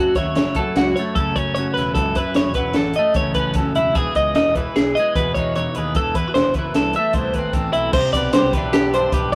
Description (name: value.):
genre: math rock and midwest emo.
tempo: 150 BPM.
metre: 5/4.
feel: straight.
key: unclear.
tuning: A4 = 440 Hz.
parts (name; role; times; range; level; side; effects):
twelve-string electric guitar; accompaniment; 0.0-9.3 s; E2 to A4; -27 LUFS; equal; none.
twelve-string electric guitar; arpeggios; 0.0-9.3 s; E4 to E5; -22 LUFS; equal; none.
fuzz fingered electric bass; bass; 0.0-9.3 s; E1 to G2; -30 LUFS; equal; overdrive.
compact cocktail drum kit; drums; 0.2-9.3 s; crash cymbal, hi-hat, kick drum, snare drum; -24 LUFS; equal; none.
room: light reverb.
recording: rough rehearsal-room recording.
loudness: -19 LUFS.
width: mono.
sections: 0.0-8.0 A section; 8.0-9.3 B section.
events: none.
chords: 0.0 F#m7; 4.0 Emaj7; 6.0 Am6/E; 8.0 Cmaj9.